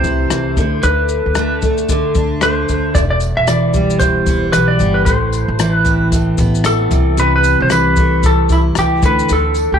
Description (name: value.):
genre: acoustic pop.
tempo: 114 BPM.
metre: 4/4.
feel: swing 60% on 16ths.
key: unclear.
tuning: A4 = 441 Hz.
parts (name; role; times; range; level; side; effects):
clean lap steel guitar; melody; 0.0-9.8 s; E4 to E5; -16 LUFS; equal; none.
picked steel-string acoustic guitar; accompaniment; 0.0-9.8 s; E2 to E4; -17 LUFS; equal; double-tracked left and right.
upright bass; bass; 0.0-9.8 s; E1 to D2; -18 LUFS; equal; none.
jazz brush drum kit; drums; 0.0-9.7 s; kick drum, rim click, shaker; -19 LUFS; left 2 dB; none.
tambourine; percussion; 3.0-9.7 s; none; -33 LUFS; right 16 dB; none.
room: moderate spring reverb, RT60 1.8 s, studio ambience.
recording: 1960s-style stereo.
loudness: -12 LUFS.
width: side -8 dB against mid.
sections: 0.0-9.8 A section.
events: none.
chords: 0.0 C6; 0.6 D5; 3.0 Em; 5.1 Amadd9; 6.9 C6; 9.0 Dsus2.